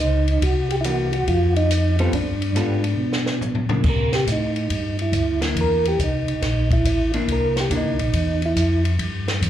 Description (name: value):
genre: soul jazz organ trio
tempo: 140 BPM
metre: 4/4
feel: swing 67% on 8ths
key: C mixolydian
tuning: A4 = 440 Hz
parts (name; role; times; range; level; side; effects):
- percussive tonewheel organ; melody; 0.0-8.8 s; C4 to Bb4; -23 LUFS; right 2 dB; slow rotary speaker, chorus vibrato, slapback echo
- mellow tonewheel organ; bass; 0.0-9.5 s; A1 to Db3; -22 LUFS; equal; chorus vibrato, slow rotary speaker
- compact cocktail drum kit; drums; 0.3-9.5 s; crash cymbal, hi-hat, kick drum, ride cymbal, snare drum, toms; -26 LUFS; left 1 dB; none
- vintage hollow-body jazz guitar; accompaniment; 0.8-8.0 s; E3 to A4; -27 LUFS; left 2 dB; slapback echo
room: light reverb, small room ambience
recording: live gig heard through the venue's PA, club reverb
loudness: -18 LUFS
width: side -11 dB against mid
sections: 0.0-3.8 A section; 3.8-9.5 B section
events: drum fill 3.0-3.8; tonewheel organ solo 3.8-9.5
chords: 0.4 C9; 1.3 F9; 2.1 G9; 3.8 C9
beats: | 0.41 0.84 1.27 1.70 | 2.13 2.56 2.99 3.42 | 3.85 4.28 4.70 5.13 | 5.56 5.99 6.42 6.85 | 7.28 7.71 8.14 8.56 | 8.99 9.42